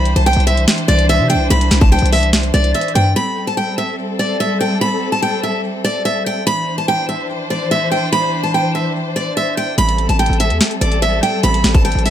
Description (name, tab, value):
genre	hip hop, trap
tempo	145 BPM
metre	4/4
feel	half-time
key	A minor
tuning	A4 = 437 Hz
part	picked steel-string acoustic guitar	melody	0.0-12.1 s	D5 to B5	-17 LUFS	right 1 dB	none
part	warm symphonic string section	sustained chords	0.0-12.1 s	E3 to C5	-21 LUFS	left 1 dB	none
part	hard-hitting 808-style bass	bass	0.0-3.2, 9.8-12.1 s	A1 to C3	-15 LUFS	equal	none
part	trap drum kit	drums	0.1-3.0, 9.8-12.1 s	hi-hat, kick drum, snare drum	-16 LUFS	equal	vintage 12-bit sampler grit
room	little or no reverb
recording	none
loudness	-13 LUFS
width	side -10 dB against mid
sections	0.0-3.2 A section; 3.2-12.1 A section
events	none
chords	0.0 Cadd9; 3.2 Am7; 6.5 Cadd9; 9.8 Am7